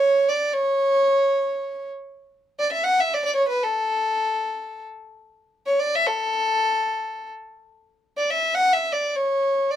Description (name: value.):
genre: Persian modal ensemble.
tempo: free time.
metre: none.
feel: none.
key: A dastgah mahur.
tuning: A4 = 440 Hz.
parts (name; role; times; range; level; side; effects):
warm violin; solo; 0.0-9.8 s; A4 to F#5; -20 LUFS; equal; none.
room: moderate small room reverb, RT60 0.5 s.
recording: none.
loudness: -20 LUFS.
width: side -10 dB against mid.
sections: 0.0-7.9 A section; 7.9-9.8 A section.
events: none.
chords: none.